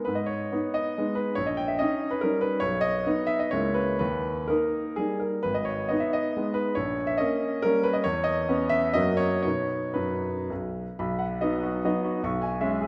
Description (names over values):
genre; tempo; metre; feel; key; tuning
classical, romantic triple-time dance for piano with dotted rhythms; 110-164 BPM; 3/4; rubato; G# minor, B major from 8.1 s; A4 = 440 Hz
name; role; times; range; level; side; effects
clear grand piano; solo; 0.0-12.9 s; G#1 to C#6; -27 LUFS; equal; none
room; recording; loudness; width
wet concert hall reverb, RT60 1.9 s; none; -27 LUFS; mono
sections
0.1-11.0 A section; 11.0-12.9 B section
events
none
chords
0.1 G#m; 1.4 D#7/A#; 2.6 Badd9; 3.5 A#m7b5/C#; 4.0 D#; 5.4 G#m; 6.8 D#7/A#; 8.1 C#m7/E; 9.0 F#; 9.5 B; 12.2 C#m7/B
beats
| 0.07 0.53 0.97 | 1.38 1.80 2.22 | 2.62 3.06 3.53 | 4.00 4.50 4.99 | 5.45 5.91 6.36 | 6.77 7.20 7.64 | 8.06 8.49 8.96 | 9.45 9.97 10.50 | 10.99 11.42 11.85 | 12.24 12.62